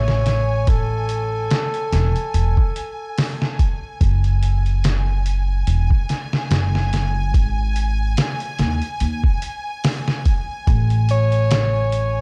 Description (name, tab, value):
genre	trip hop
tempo	72 BPM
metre	4/4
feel	swing 56% on 16ths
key	unclear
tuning	A4 = 440 Hz
part	trumpet with bucket mute	melody	0.0-3.6, 11.1-12.2 s	A4 to C#5	-26 LUFS	equal	dub echo
part	bright symphonic string section	sustained chords	0.0-12.2 s	G#5	-34 LUFS	equal	none
part	upright bass	bass	0.0-12.2 s	E1 to D#2	-21 LUFS	equal	none
part	trip hop sampler-style drum kit	drums	0.1-12.1 s	hi-hat, kick drum, snare drum	-22 LUFS	equal	vintage 12-bit sampler grit
room	small room ambience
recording	dark, warm production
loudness	-20 LUFS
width	mono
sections	0.0-12.2 A section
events	none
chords	0.0 Amaj7(no3); 4.0 Eadd9 (rootless); 7.3 G#5; 10.7 Amaj7